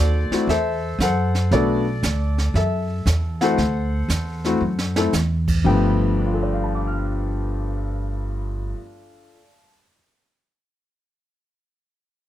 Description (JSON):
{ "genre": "jazz piano trio", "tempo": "116 BPM", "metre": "4/4", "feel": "swing 67% on 8ths", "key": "G mixolydian", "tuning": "A4 = 436 Hz", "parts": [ { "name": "warm upright piano", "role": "melody", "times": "0.0-9.9 s", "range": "G2 to F6", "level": "-23 LUFS", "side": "left 2 dB", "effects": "none" }, { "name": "upright bass", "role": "bass", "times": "0.0-8.7 s", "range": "G1 to F#2", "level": "-22 LUFS", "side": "equal", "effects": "none" }, { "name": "jazz brush drum kit", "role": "drums", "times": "0.3-5.6 s", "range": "brushed snare drum, crash cymbal, hi-hat, kick drum, snare drum", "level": "-27 LUFS", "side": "right 3 dB", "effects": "none" } ], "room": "little or no reverb", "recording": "none", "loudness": "-19 LUFS", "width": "side -12 dB against mid", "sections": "0.0-5.6 A section; 5.6-9.8 B section", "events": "drum fill 4.6-5.1", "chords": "0.0 D9; 1.5 Bm7; 3.6 D9; 5.6 G9" }